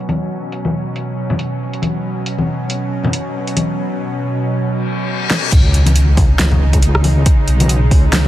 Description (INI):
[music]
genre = deep dubstep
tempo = 138 BPM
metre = 4/4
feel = swing 57% on 16ths, half-time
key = unclear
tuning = A4 = 441 Hz
[part]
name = bowed-like drone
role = sustained chords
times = 0.0-8.3 s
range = B2 to D#4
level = -20 LUFS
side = right 1 dB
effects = built-in reverb
[part]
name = deep house drum kit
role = drums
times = 0.0-8.2 s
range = crash cymbal, hi-hat, rim click, snare drum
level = -20 LUFS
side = equal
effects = none
[part]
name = congas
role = percussion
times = 0.1-8.3 s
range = none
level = -22 LUFS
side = left 2 dB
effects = none
[part]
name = reverse cymbal and sub drop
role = sound effects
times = 4.8-7.3 s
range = none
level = -23 LUFS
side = left 2 dB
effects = none
[part]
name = deep soft wobble bass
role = bass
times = 5.5-8.3 s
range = B1 to C#2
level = -13 LUFS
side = equal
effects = chorus, tube saturation
[part]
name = electronic kick drum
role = drums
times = 5.5-8.0 s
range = none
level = -12 LUFS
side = equal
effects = none
[sound]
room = little or no reverb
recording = low-pass filter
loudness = -13 LUFS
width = side -13 dB against mid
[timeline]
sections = 0.0-5.5 A section; 5.5-8.3 B section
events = filter sweep 0.0-5.5; reverse cymbal 4.8-5.5; drum fill 5.3; drop 5.5-8.3; impact 5.5-7.3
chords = 0.0 B5; 5.5 C#5